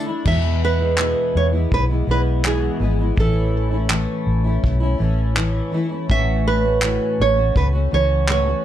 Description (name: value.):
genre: acoustic pop.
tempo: 82 BPM.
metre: 4/4.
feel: straight.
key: unclear.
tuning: A4 = 440 Hz.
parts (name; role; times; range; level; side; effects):
fingerpicked steel-string acoustic guitar; accompaniment; 0.0-8.6 s; E2 to F#4; -23 LUFS; left 2 dB; double-tracked left and right.
nylon-string guitar; melody; 0.3-8.6 s; G#4 to E5; -22 LUFS; right 5 dB; plate reverb, ping-pong delay.
vintage muted fingered electric bass; bass; 0.3-8.5 s; G#1 to E2; -20 LUFS; equal; none.
unplugged drum kit; drums; 0.3-8.5 s; crash cymbal, handclaps, kick drum; -22 LUFS; equal; none.
room: light reverb.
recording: dark, warm production.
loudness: -16 LUFS.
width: side -11 dB against mid.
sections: 0.3-8.6 A section.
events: none.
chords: 0.3 E; 3.2 A; 6.1 F#m7/A.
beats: | 0.26 0.99 1.72 2.45 | 3.17 3.90 4.63 5.37 | 6.09 6.83 7.55 8.29.